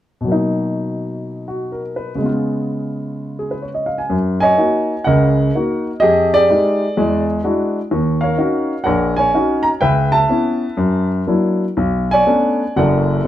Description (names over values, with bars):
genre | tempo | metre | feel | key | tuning
solo jazz | 125 BPM | 4/4 | swing 68% on 8ths, rubato | F# major | A4 = 444 Hz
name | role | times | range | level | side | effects
warm baby grand piano | solo | 0.2-13.3 s | F#1 to A#5 | -15 LUFS | equal | none
room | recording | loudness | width
wet studio reverb, RT60 0.5 s | heard from further back in the room | -14 LUFS | side -12 dB against mid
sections
0.3-4.1 A section; 4.1-13.3 B section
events
none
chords
0.3 Bmaj7; 2.2 C#7; 4.1 F#6; 6.0 Fm9; 7.0 E9; 7.9 D#m7; 9.8 A9/C#; 10.8 F#aug7; 11.8 Bm9